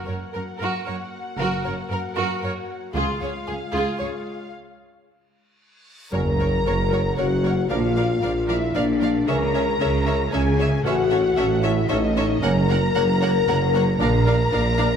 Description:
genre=cinematic, epic orchestral film score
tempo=114 BPM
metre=3/4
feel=straight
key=unclear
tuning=A4 = 440 Hz
part: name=dark symphonic violin section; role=melody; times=0.0-15.0 s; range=D5 to A#5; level=-30 LUFS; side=left 2 dB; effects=none
part: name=rich chamber violin section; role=second line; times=0.0-14.9 s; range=E#4 to F#5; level=-30 LUFS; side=equal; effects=none
part: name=rich symphonic viola section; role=accompaniment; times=0.0-14.9 s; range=E#3 to A#4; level=-30 LUFS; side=right 2 dB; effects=none
part: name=mellow French horn section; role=sustained chords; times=0.0-15.0 s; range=G#3 to A#4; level=-25 LUFS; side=left 5 dB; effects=none
part: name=clear symphonic double bass section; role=bass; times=0.0-3.2, 6.1-15.0 s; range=F#1 to C#2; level=-25 LUFS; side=right 2 dB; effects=none
part: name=rich symphonic cello section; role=bass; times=0.1-15.0 s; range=C#2 to C#3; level=-27 LUFS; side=right 2 dB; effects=none
part: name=reverse cymbal and sub drop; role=sound effects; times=5.9-7.7 s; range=none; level=-32 LUFS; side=equal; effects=none
part: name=bright trombone section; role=sustained chords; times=6.1-14.2 s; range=E3 to D4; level=-33 LUFS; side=right 3 dB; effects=none
part: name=warm tuba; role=bass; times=6.1-15.0 s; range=F#1 to C#2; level=-28 LUFS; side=right 3 dB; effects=none
room=wet scoring stage reverb, RT60 1.9 s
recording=none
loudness=-19 LUFS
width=side -7 dB against mid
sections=0.0-6.1 A section; 6.1-15.0 B section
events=break 4.5-6.1; reverse cymbal 5.9; impact 6.1-7.7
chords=0.0 F#; 3.0 C#; 6.1 F#; 7.7 A#; 9.3 C#m; 10.9 A; 12.4 F#; 14.0 A#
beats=0.33 0.86 | 1.38 1.91 2.43 | 2.95 3.47 4.00 | 4.53 5.07 5.60 | 6.13 6.66 7.18 | 7.71 8.23 8.75 | 9.28 9.81 10.33 | 10.85 11.38 11.90 | 12.43 12.95 13.47 | 14.00 14.52

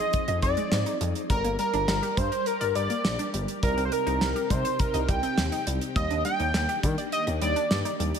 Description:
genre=synth-pop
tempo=103 BPM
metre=4/4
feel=straight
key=C minor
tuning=A4 = 442 Hz
part: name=octave-doubled lead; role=melody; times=0.0-8.0 s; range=Bb4 to G5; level=-28 LUFS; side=equal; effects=chorus, phaser, ping-pong delay
part: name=string machine, violins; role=sustained chords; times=0.0-8.2 s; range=C3 to D5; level=-34 LUFS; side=left 1 dB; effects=ensemble chorus
part: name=analog pluck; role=arpeggios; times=0.0-8.1 s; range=F3 to Eb5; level=-35 LUFS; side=right 2 dB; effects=chorus, ping-pong delay
part: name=damped 70s drum kit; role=drums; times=0.1-8.2 s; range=hi-hat, kick drum, snare drum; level=-29 LUFS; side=equal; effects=gated reverb
part: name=smooth gliding synth bass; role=bass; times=0.3-8.1 s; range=G1 to Eb3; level=-30 LUFS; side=equal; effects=none
room=light reverb, small room ambience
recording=none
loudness=-24 LUFS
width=side -7 dB against mid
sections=0.0-8.2 A section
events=none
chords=0.0 Fm7; 1.3 Gm; 3.6 Cm; 6.0 Ebmaj7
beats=0.13 0.72 | 1.30 1.88 2.46 3.05 | 3.63 4.21 4.79 5.38 | 5.96 6.54 7.12 7.71

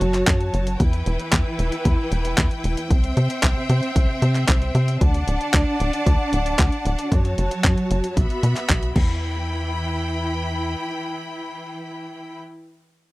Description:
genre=italo disco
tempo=114 BPM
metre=4/4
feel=straight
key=E minor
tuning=A4 = 439 Hz
part: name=bright studio string section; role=sustained chords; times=0.0-12.4 s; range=E3 to B5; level=-25 LUFS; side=equal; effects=none
part: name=tight sequencer bass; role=bass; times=0.0-10.8 s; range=D1 to C3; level=-22 LUFS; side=equal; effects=none
part: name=clean 12-bit digital drum machine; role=drums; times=0.0-9.1 s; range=crash cymbal, handclaps, hi-hat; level=-24 LUFS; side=equal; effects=none
part: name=electronic kick drum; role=drums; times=0.3-9.1 s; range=none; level=-20 LUFS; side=equal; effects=none
room=little or no reverb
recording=dry, close 1970s-style studio recording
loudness=-19 LUFS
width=side -19 dB against mid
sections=0.0-9.2 A section; 9.2-13.1 B section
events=none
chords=0.0 F#m; 0.8 Em; 2.9 C; 5.0 D; 7.1 F#m; 8.2 Bsus4; 9.0 Em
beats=0.27 | 0.80 1.33 1.85 2.38 | 2.90 3.43 3.96 4.48 | 5.01 5.54 6.06 6.59 | 7.12 7.64 8.17 8.69 | 9.22 9.75 10.27 10.80 | 11.33 11.85 12.38

